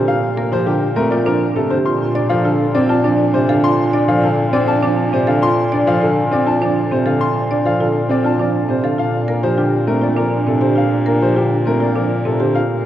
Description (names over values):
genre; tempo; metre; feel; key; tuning
classical, minimalist pattern music; 101 BPM; 3/4; straight; unclear; A4 = 440 Hz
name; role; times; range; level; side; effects
clear baby grand piano; melody; 0.0-12.7 s; G4 to C6; -20 LUFS; left 3 dB; none
dark baby grand piano; accompaniment; 0.0-12.6 s; C3 to D4; -20 LUFS; equal; none
marimba with medium hard mallets; arpeggios; 0.0-12.7 s; C4 to D5; -20 LUFS; right 4 dB; none
clear bass clarinet; bass; 0.0-12.9 s; Bb2; -20 LUFS; left 1 dB; none
wooden-headed alto flute; second line; 1.9-5.2, 9.0-12.4 s; D4; -24 LUFS; right 3 dB; none
room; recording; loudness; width
wet cathedral reverb, RT60 5.9 s; worn, warbling old tape, cassette tape, warbly pitch drift; -14 LUFS; side -12 dB against mid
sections
0.0-12.9 A section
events
none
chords
0.0 Bbadd9; 1.9 Dm/Bb; 9.0 Bbadd9